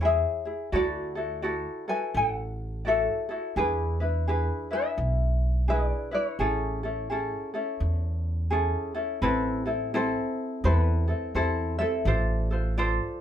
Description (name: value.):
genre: Hawaiian.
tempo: 85 BPM.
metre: 4/4.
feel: swing 62% on 8ths.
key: A major, A minor from 9.2 s.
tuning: A4 = 439 Hz.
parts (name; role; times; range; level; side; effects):
tenor ukulele; melody; 0.0-12.7 s; D4 to G#5; -29 LUFS; left 2 dB; none.
ukulele; accompaniment; 0.0-13.2 s; C4 to D5; -29 LUFS; equal; none.
upright bass; bass; 0.0-13.0 s; A1 to E2; -28 LUFS; right 1 dB; none.
room: wet studio reverb, RT60 0.5 s.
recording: band playing live in one room.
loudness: -25 LUFS.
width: side -10 dB against mid.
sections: 0.0-9.2 A section; 9.2-13.2 B section.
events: none.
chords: 0.0 Amaj7 (rootless); 0.7 Dadd9; 3.6 E7; 6.4 Amaj7; 9.2 Amadd9; 12.1 Dm7/A.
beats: 0.02 | 0.73 1.44 2.15 2.85 | 3.56 4.27 4.98 5.69 | 6.39 7.10 7.81 8.52 | 9.23 9.94 10.64 11.35 | 12.06 12.77.